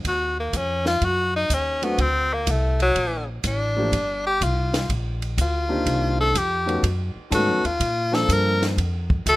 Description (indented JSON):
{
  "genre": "jazz, small-group swing and bop",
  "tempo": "124 BPM",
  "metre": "4/4",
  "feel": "swing 67% on 8ths",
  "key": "unclear",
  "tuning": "A4 = 436 Hz",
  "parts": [
    { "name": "upright bass", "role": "bass", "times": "0.0-9.4 s", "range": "G1 to Bb2", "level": "-25 LUFS", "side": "equal", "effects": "none" },
    { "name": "compact cocktail drum kit", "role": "drums", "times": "0.0-9.4 s", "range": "hi-hat, kick drum, ride cymbal, snare drum", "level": "-28 LUFS", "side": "equal", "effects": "none" },
    { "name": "edgy tenor saxophone", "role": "melody", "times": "0.1-9.4 s", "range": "F#3 to Bb4", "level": "-22 LUFS", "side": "left 1 dB", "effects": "none" },
    { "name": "warm concert grand piano", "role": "accompaniment", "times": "1.8-8.7 s", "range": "Eb3 to A4", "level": "-26 LUFS", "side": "left 1 dB", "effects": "none" }
  ],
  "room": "small room ambience",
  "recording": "rough home demo mix",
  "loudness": "-20 LUFS",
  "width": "side -17 dB against mid",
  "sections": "0.0-9.4 A section",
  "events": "tenor saxophone solo 0.0-9.4",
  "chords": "0.0 Ebm; 2.0 D7; 3.9 Gm7; 5.9 Cm7; 6.8 B9; 7.8 Bbmaj7",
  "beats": "| 0.05 0.53 1.02 1.50 | 1.99 2.47 2.96 3.44 | 3.92 4.41 4.89 5.38 | 5.86 6.34 6.83 7.31 | 7.80 8.28 8.77 9.25"
}